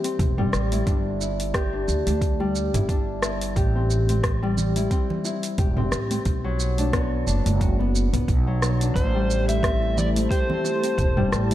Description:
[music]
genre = organic downtempo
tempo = 89 BPM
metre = 4/4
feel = swing 56% on 16ths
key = A dorian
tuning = A4 = 439 Hz
[part]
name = Celtic harp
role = arpeggios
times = 0.0-11.5 s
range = F#3 to G4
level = -26 LUFS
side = left 2 dB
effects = digital delay
[part]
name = deep house drum kit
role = drums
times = 0.0-11.5 s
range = hi-hat, rim click, shaker, toms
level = -29 LUFS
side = equal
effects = none
[part]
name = upright bass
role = bass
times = 0.2-11.5 s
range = E1 to D2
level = -24 LUFS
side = equal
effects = sidechain pumping
[part]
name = electronic kick drum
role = drums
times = 0.2-11.1 s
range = none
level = -24 LUFS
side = equal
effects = none
[part]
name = bongos and congas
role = percussion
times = 0.2-11.5 s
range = none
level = -32 LUFS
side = right 3 dB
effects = none
[part]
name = overdriven slide guitar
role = melody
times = 9.0-11.3 s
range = C5 to E5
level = -27 LUFS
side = right 1 dB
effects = none
[part]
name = warm analog pad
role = sustained chords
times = 9.0-11.5 s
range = A3 to A5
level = -30 LUFS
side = left 1 dB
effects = chorus, sidechain pumping
[sound]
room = light reverb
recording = dark, warm production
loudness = -20 LUFS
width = side -13 dB against mid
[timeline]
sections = 0.0-11.5 A section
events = none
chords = 0.0 Am7; 0.9 G5; 3.6 Am7; 6.3 Bm; 9.0 Am7

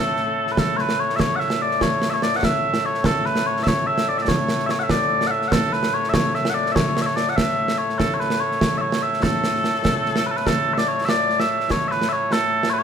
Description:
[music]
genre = scottish traditional, Scottish pipe music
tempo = 97 BPM (dotted quarters)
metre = 6/8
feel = straight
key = A major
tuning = A4 = 441 Hz
[part]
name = mellow small bagpipes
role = melody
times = 0.0-12.8 s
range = A2 to F#5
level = -20 LUFS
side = equal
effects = none
[part]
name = concert snare drum and concert bass drum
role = drums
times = 0.2-12.7 s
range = none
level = -23 LUFS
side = right 1 dB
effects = none
[sound]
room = wet stone room reverb, RT60 1.2 s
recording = band playing live in one room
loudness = -18 LUFS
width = side -7 dB against mid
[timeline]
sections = 0.6-10.5 A section; 10.5-12.8 B section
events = none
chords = none

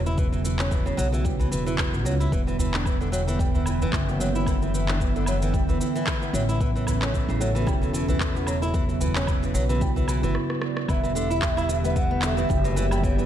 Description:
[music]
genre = organic downtempo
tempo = 112 BPM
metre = 4/4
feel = swing 56% on 16ths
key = E dorian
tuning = A4 = 440 Hz
[part]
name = mellow tine electric piano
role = accompaniment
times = 0.0-13.3 s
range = C#3 to F#4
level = -30 LUFS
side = right 3 dB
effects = slow stereo tremolo, sidechain pumping, tape echo
[part]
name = upright bass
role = bass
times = 0.0-13.3 s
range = E1 to C#2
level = -26 LUFS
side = left 1 dB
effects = sidechain pumping
[part]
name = flamenco guitar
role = arpeggios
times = 0.1-13.3 s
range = B2 to E4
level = -30 LUFS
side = equal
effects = tape echo
[part]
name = electronic cabasa, handclaps, woodblock and rim click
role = drums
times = 0.1-13.3 s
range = none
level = -32 LUFS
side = equal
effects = none
[part]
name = electronic kick drum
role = drums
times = 0.2-13.2 s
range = none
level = -26 LUFS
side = left 1 dB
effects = none
[part]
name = udu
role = percussion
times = 1.4-10.1 s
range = none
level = -29 LUFS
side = equal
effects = none
[part]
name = airy breathy pad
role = sustained chords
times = 2.3-13.3 s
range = E3 to G5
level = -33 LUFS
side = equal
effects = chorus, sidechain pumping
[part]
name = mellow hollow low ney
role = melody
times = 10.6-13.3 s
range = D5 to F#5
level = -29 LUFS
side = right 2 dB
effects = ping-pong delay
[sound]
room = light reverb, studio reverb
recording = none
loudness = -22 LUFS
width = side -10 dB against mid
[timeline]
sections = 0.0-10.9 A section; 10.9-13.3 B section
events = break 10.4-10.9; drum fill 10.4-10.9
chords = 0.0 A (rootless); 2.3 Em; 6.6 A; 10.9 Em

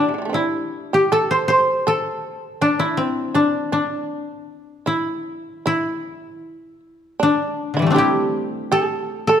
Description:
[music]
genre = japanese traditional, Japanese chamber music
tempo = 80 BPM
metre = 2/4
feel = rubato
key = D suspended pentatonic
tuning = A4 = 440 Hz
[part]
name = koto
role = melody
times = 0.0-9.4 s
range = D3 to C5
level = -20 LUFS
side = left 2 dB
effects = none
[part]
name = shamisen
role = second line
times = 0.0-9.4 s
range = C3 to C5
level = -22 LUFS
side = right 4 dB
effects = none
[sound]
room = moderate recital hall reverb, RT60 1.7 s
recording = dark, warm production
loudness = -18 LUFS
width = side -9 dB against mid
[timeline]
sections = 0.0-5.7 A section; 5.7-9.4 B section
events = none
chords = none

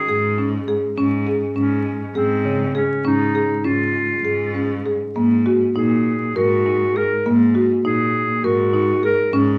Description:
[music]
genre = contemporary instrumental, contemporary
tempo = 202 BPM (eighths)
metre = 7/8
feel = straight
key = unclear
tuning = A4 = 440 Hz
[part]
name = bright clarinet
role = melody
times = 0.0-9.3 s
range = C4 to Bb4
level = -23 LUFS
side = equal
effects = none
[part]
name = marimba with medium mallets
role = arpeggios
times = 0.1-9.6 s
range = Db3 to Bb4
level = -22 LUFS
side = equal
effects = none
[part]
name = rich cello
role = bass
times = 0.1-9.6 s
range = Ab2 to Bb2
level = -26 LUFS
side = equal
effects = none
[sound]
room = light reverb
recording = worn, warbling old tape, cassette tape, vinyl crackle, warbly pitch drift, studio reverb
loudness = -19 LUFS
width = mono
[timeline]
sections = 0.0-9.6 A section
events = none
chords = 0.0 Absus4; 5.2 Ebm/Ab

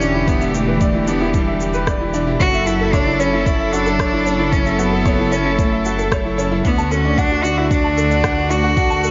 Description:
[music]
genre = piano and strings electronica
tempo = 113 BPM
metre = 4/4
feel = straight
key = unclear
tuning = A4 = 441 Hz
[part]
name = bright cello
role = melody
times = 0.0-9.1 s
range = G3 to F#4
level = -22 LUFS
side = equal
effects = digital delay
[part]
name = rich chamber string section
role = sustained chords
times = 0.0-9.1 s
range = D3 to A4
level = -26 LUFS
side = equal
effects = sidechain pumping
[part]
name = clear upright piano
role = riff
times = 0.0-9.1 s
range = C#4 to A5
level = -23 LUFS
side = equal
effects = digital delay
[part]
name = dark detuned saw bass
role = bass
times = 0.0-9.1 s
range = E1 to D2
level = -24 LUFS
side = equal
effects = sidechain pumping
[part]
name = electronic shaker and rim click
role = drums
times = 0.0-9.1 s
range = none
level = -30 LUFS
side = equal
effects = studio reverb
[part]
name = electronic kick drum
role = drums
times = 0.3-8.9 s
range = none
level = -22 LUFS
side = equal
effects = studio reverb
[sound]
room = light reverb, small room ambience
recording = nothing above 7.4 kHz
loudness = -17 LUFS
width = mono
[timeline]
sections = 0.0-9.1 A section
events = none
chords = 0.0 Em7; 2.4 F#m7; 6.6 D

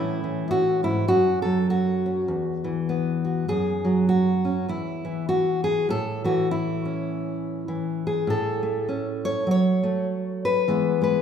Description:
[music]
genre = folk, solo fingerstyle acoustic guitar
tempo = 100 BPM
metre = 4/4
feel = swing 59% on 8ths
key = unclear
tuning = A4 = 440 Hz
[part]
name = fingerpicked steel-string acoustic guitar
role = solo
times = 0.0-11.2 s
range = E2 to C#5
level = -22 LUFS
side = equal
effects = none
[sound]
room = wet recital hall reverb, RT60 1.4 s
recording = minimal, uncompressed stereo recording, faint mains hum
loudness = -22 LUFS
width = side -8 dB against mid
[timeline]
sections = 0.0-11.2 A section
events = none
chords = 0.0 A; 1.1 F#5; 2.3 Esus2; 3.5 F#5; 4.7 N.C.; 5.9 A; 9.5 F#m; 10.7 E

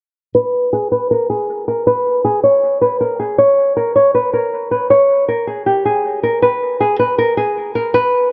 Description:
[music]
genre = hip hop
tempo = 158 BPM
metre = 4/4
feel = half-time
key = unclear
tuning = A4 = 440 Hz
[part]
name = nylon-string guitar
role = melody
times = 0.3-8.3 s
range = G4 to C#5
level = -15 LUFS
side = equal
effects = low-pass filter, dub echo
[sound]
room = moderate plate reverb, RT60 2.6 s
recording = echo-heavy mix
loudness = -15 LUFS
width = mono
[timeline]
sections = 0.3-8.3 A section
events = filter sweep on nylon-string guitar 0.3-8.3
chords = none

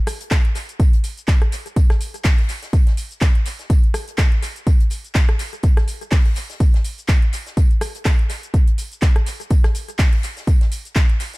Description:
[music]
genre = house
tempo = 124 BPM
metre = 4/4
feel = swing 56% on 16ths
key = none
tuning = none
[part]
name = house drum kit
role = drums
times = 0.1-11.4 s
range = cabasa, handclaps, hi-hat, rim click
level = -28 LUFS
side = equal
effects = small room ambience, analog delay
[part]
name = warm soul drum kit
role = drums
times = 0.1-11.4 s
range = hi-hat, snare drum, tambourine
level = -38 LUFS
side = left 2 dB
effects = high-pass filter on hats, small room ambience, high-pass filter on snare, high-pass filter on perc, high-pass filter on room
[part]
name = electronic kick drum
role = drums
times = 0.3-11.1 s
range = none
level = -15 LUFS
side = equal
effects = small room ambience
[sound]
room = small room reverb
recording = echo-heavy mix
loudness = -16 LUFS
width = side -22 dB against mid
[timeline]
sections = 0.0-11.4 A section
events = none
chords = none

